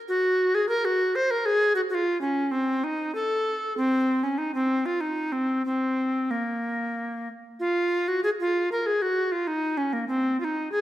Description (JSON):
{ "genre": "classical, baroque-style fantasia for unaccompanied recorder", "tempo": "90-100 BPM", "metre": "3/4", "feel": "rubato", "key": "unclear", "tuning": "A4 = 440 Hz", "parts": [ { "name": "bright bass recorder", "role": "solo", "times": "0.1-10.8 s", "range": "Bb3 to C5", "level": "-23 LUFS", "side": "equal", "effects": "none" } ], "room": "wet recital hall reverb, RT60 1.7 s", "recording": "minimal, uncompressed stereo recording", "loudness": "-23 LUFS", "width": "side -14 dB against mid", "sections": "0.0-7.6 A section; 7.6-10.8 A section", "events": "none", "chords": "none", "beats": "| 0.09 0.69 1.29 | 1.90 2.52 3.16 | 3.77 4.39 5.02 | 5.67 6.31 6.96 | 7.61 8.23 8.85 | 9.46 10.07 10.72" }